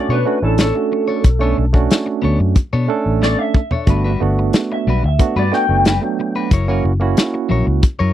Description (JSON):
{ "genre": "straight-eighth soul blues", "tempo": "91 BPM", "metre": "4/4", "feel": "straight", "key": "B minor", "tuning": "A4 = 440 Hz", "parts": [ { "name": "electric guitar through a small old amp", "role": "melody", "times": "0.0-6.5 s", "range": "A4 to G5", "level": "-21 LUFS", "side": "left 2 dB", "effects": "lush chorus" }, { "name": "barky tine electric piano", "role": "accompaniment", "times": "0.0-7.8 s", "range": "F#3 to A4", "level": "-20 LUFS", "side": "right 7 dB", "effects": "medium stereo tremolo" }, { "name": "clean electric guitar", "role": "stabs", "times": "0.1-8.1 s", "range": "F#3 to C#5", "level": "-22 LUFS", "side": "left 5 dB", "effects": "none" }, { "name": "vintage muted fingered electric bass", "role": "bass", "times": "0.1-8.1 s", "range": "F#1 to B2", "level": "-17 LUFS", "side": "left 1 dB", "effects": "none" }, { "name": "warm soul drum kit", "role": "drums", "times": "0.6-8.0 s", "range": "hi-hat, kick drum, snare drum, toms", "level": "-14 LUFS", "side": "left 1 dB", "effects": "none" } ], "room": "little or no reverb", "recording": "dry, close 1970s-style studio recording", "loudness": "-14 LUFS", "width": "side -12 dB against mid", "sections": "0.0-8.1 A section", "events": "drum fill 3.2-3.9", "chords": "0.0 Bm9; 3.9 Gmaj7; 6.5 F#7", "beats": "0.59 | 1.25 1.90 2.56 3.22 | 3.88 4.54 5.20 5.86 | 6.51 7.17 7.83" }